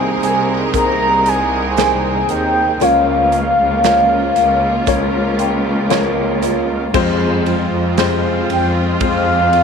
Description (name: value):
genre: pop ballad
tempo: 58 BPM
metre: 4/4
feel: straight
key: F minor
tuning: A4 = 440 Hz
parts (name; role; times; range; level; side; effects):
- mellow horn-like synth lead; melody; 0.0-9.6 s; F5 to Bb5; -15 LUFS; equal; chorus, phaser, slapback echo
- warm concert grand piano; accompaniment; 0.0-9.6 s; C3 to G5; -21 LUFS; left 11 dB; none
- clear symphonic string section; sustained chords; 0.0-9.6 s; C3 to Bb4; -22 LUFS; right 2 dB; none
- picked steel-string acoustic guitar; arpeggios; 0.0-9.6 s; F2 to Bb4; -24 LUFS; right 12 dB; none
- rich symphonic cello section; bass; 0.0-9.6 s; C2 to F2; -20 LUFS; equal; none
- modern studio drum kit; drums; 0.2-9.6 s; crash cymbal, hi-hat, kick drum, ride cymbal, snare drum; -23 LUFS; right 5 dB; none
room: wet spring reverb, RT60 2.4 s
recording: 1960s-style stereo with parts hard left and right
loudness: -13 LUFS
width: side -6 dB against mid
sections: 0.0-6.9 A section; 6.9-9.6 B section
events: grand piano fill 4.9-6.9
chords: 0.0 Abadd9/C; 2.8 Bbm/Db; 6.9 Fm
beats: 0.74 1.77 | 2.81 3.84 4.88 5.91 | 6.95 7.98 9.02